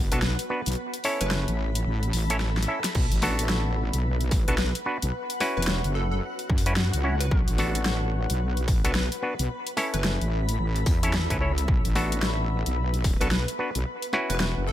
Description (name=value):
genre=glitch hop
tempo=110 BPM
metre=4/4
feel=swing 61% on 16ths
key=B minor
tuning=A4 = 439 Hz
part: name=auto-wah clav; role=stabs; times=0.0-14.7 s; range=B3 to E5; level=-31 LUFS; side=equal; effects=vintage 12-bit sampler grit, sidechain pumping, digital delay
part: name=wobble bass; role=bass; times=0.0-14.7 s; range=E1 to F#2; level=-26 LUFS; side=equal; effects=chorus, overdrive
part: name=granular cloud pad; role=texture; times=0.0-14.7 s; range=F#4 to B5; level=-34 LUFS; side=left 2 dB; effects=built-in reverb, sidechain pumping
part: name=plucky unison lead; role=melody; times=0.1-14.7 s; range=A4 to B4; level=-36 LUFS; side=equal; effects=digital delay
part: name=dubstep drum kit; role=drums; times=0.1-14.5 s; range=crash cymbal, hi-hat, snare drum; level=-30 LUFS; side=left 1 dB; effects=none
part: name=electronic kick drum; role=drums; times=3.0-13.2 s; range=none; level=-25 LUFS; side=equal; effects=distortion
room=little or no reverb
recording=none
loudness=-23 LUFS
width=side -12 dB against mid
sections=0.0-14.7 A section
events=kick drops out 0.8-3.0; drum fill 2.4-3.0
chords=0.0 Bm7; 0.8 A; 3.0 Bm7; 5.1 F#7sus4; 7.3 Bm7; 9.5 A; 11.7 Bm7; 13.9 F#7sus4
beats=0.22 | 0.77 1.31 1.86 2.40 | 2.95 3.50 4.04 4.59 | 5.13 5.68 6.22 6.77 | 7.31 7.86 8.40 8.95 | 9.50 10.04 10.59 11.13 | 11.68 12.22 12.77 13.31 | 13.86 14.40